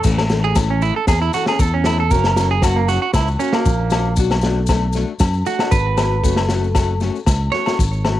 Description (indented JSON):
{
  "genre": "highlife guitar band",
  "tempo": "116 BPM",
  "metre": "4/4",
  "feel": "straight",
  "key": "A major",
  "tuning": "A4 = 439 Hz",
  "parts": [
    { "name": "fingerpicked steel-string acoustic guitar", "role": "accompaniment", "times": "0.0-8.2 s", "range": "E3 to A4", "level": "-24 LUFS", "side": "left 8 dB", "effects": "cassette tape" },
    { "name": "semi-hollow electric guitar", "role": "arpeggios", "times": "0.0-7.8 s", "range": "A#3 to C#5", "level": "-21 LUFS", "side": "right 7 dB", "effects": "cassette tape, analog delay" },
    { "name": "fingered electric bass", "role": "bass", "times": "0.0-8.2 s", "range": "F#1 to F#2", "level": "-19 LUFS", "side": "equal", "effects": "none" },
    { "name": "crunchy breakbeat drum kit", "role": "drums", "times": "0.0-8.2 s", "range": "crash cymbal, kick drum, snare drum", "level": "-20 LUFS", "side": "equal", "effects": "cassette tape" },
    { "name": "maracas", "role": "percussion", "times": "0.0-8.0 s", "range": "none", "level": "-33 LUFS", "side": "left 9 dB", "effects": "none" },
    { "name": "agogo bells", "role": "percussion", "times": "0.2-8.2 s", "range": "none", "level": "-25 LUFS", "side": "left 7 dB", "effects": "none" }
  ],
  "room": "small room ambience",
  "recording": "home recording on cassette",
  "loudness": "-15 LUFS",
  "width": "side -13 dB against mid",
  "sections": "0.1-8.2 A section",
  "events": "clean electric guitar solo 0.1-8.2",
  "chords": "0.1 A; 2.1 F#; 4.2 Bm7; 6.2 F#m",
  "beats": "| 0.05 0.57 1.08 1.60 | 2.12 2.63 3.15 3.66 | 4.18 4.70 5.21 5.73 | 6.24 6.76 7.28 7.79"
}